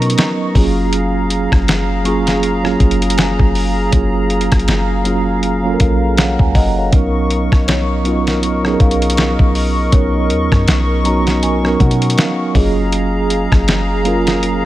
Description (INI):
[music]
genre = contemporary R&B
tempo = 80 BPM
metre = 4/4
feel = swing 58% on 16ths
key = B lydian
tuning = A4 = 440 Hz
[part]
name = mellow tine electric piano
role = accompaniment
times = 0.0-14.7 s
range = F#3 to A#5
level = -17 LUFS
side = right 3 dB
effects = medium stereo tremolo
[part]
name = hollow soft pad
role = sustained chords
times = 0.0-14.7 s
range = G#4 to C#6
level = -21 LUFS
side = left 1 dB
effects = chorus
[part]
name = clean 808-style bass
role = bass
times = 0.0-14.7 s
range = F#1 to B2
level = -18 LUFS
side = equal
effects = none
[part]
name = dusty soul sampler-style drum kit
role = drums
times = 0.0-14.6 s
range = hi-hat, kick drum, rim click, snare drum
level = -15 LUFS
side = equal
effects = none
[part]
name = worn celesta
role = texture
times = 0.0-14.7 s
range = E#4 to C#6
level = -28 LUFS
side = left 2 dB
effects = tape echo
[sound]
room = little or no reverb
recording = none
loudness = -12 LUFS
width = side -15 dB against mid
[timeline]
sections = 0.0-14.7 A section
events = tine electric piano fill 5.4-6.9, 10.7-12.9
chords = 0.0 Bmaj9; 0.6 F#maj9; 6.9 Bmaj9; 12.6 F#maj9